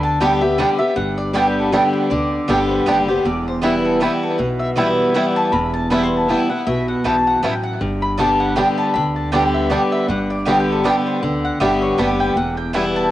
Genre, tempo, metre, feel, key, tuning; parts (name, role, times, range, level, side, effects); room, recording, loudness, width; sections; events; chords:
bluegrass; 158 BPM; 3/4; swing 56% on 8ths; G major; A4 = 440 Hz
mandolin; melody; 0.0-13.1 s; G4 to C6; -23 LUFS; left 2 dB; cassette tape
picked steel-string acoustic guitar; accompaniment; 0.0-13.1 s; E2 to G4; -18 LUFS; equal; cassette tape
upright bass; bass; 0.0-13.1 s; E1 to D2; -27 LUFS; equal
bluegrass banjo; melody; 0.2-12.8 s; G3 to E4; -27 LUFS; right 1 dB; cassette tape, tape echo
mandolin; stabs; 0.2-12.8 s; B3 to G5; -22 LUFS; right 2 dB; cassette tape
moderate lush hall reverb, RT60 2.7 s; home recording on cassette; -15 LUFS; side -14 dB against mid
0.0-13.1 A section
0.0 G; 3.3 Em; 7.8 G; 12.4 Em